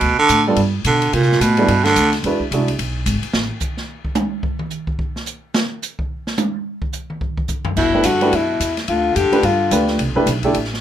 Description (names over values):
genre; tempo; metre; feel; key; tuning
jazz, small-group swing and bop; 217 BPM; 4/4; swing 59% on 8ths; G major; A4 = 440 Hz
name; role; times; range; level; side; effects
growling baritone saxophone; second line; 0.0-2.1, 7.8-9.9 s; Bb2 to D3; -17 LUFS; right 3 dB; none
upright bass; bass; 0.0-3.5, 7.8-10.8 s; G1 to C3; -20 LUFS; equal; none
open jazz drum kit; drums; 0.0-10.8 s; crash cymbal, hi-hat, kick drum, ride cymbal, snare drum, toms; -23 LUFS; equal; none
dark baby grand piano; accompaniment; 0.5-2.7, 7.9-10.5 s; G3 to B4; -18 LUFS; right 2 dB; none
breathy alto saxophone; melody; 7.8-9.9 s; E4 to G4; -18 LUFS; left 4 dB; none
room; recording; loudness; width
moderate club reverb, RT60 0.5 s; minimal, uncompressed stereo recording; -16 LUFS; side -10 dB against mid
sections
0.0-7.8 A section; 7.8-10.8 B section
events
baritone saxophone solo 0.0-7.8; drum solo 3.3-7.8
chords
0.0 Dm; 0.6 G; 1.1 Cmaj7sus2; 2.2 E7; 3.3 N.C.; 7.8 G69; 8.9 Dm; 10.0 Cmaj13 (rootless)